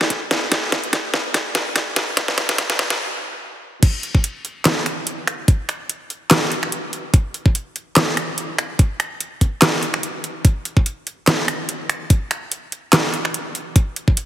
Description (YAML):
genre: dubstep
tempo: 145 BPM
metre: 4/4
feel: swing 55% on 16ths, half-time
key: none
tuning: none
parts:
  - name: dubstep drum kit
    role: drums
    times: 0.0-14.3 s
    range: crash cymbal, finger snaps, handclaps, hi-hat, snare drum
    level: -18 LUFS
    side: equal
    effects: none
  - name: electronic kick drum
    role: drums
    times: 0.1-14.2 s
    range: none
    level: -14 LUFS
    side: equal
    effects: none
room: moderate lush hall reverb, RT60 2.2 s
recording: heavily compressed radio sound, multiband compression, high-pass filter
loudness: -17 LUFS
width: side -12 dB against mid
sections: 0.0-3.8 A section; 3.8-14.3 B section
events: build-up 0.0-3.8; drum fill 0.0-3.0; stop 3.0-3.8; drop 3.8-14.3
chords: none